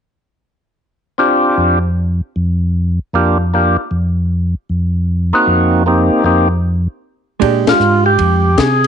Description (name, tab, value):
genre	soul jazz organ trio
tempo	154 BPM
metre	4/4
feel	swing 66% on 8ths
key	Bb mixolydian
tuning	A4 = 440 Hz
part	percussive tonewheel organ	melody	1.2-8.9 s	Bb3 to Ab4	-12 LUFS	equal	slow rotary speaker
part	mellow tonewheel organ	bass	1.6-8.9 s	F2 to C3	-14 LUFS	equal	chorus vibrato, slow rotary speaker
part	hollow-body jazz guitar	accompaniment	7.4-8.5 s	Ab3 to G4	-16 LUFS	right 13 dB	none
part	compact cocktail drum kit	drums	7.4-8.9 s	hi-hat, kick drum, ride cymbal, snare drum	-18 LUFS	left 6 dB	none
room	light reverb, studio reverb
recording	1960s-style stereo with parts hard left and right, nothing above 10.5 kHz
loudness	-12 LUFS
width	side -7 dB against mid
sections	1.2-7.4 A section; 7.4-8.9 B section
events	break 6.6-7.4; band accent 7.6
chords	1.2 Fsus2; 7.4 Bb13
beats	| 1.20 1.58 1.97 2.36 | 2.75 3.14 3.53 3.92 | 4.31 4.70 5.08 5.47 | 5.86 6.25 6.64 7.03 | 7.42 7.80 8.19 8.58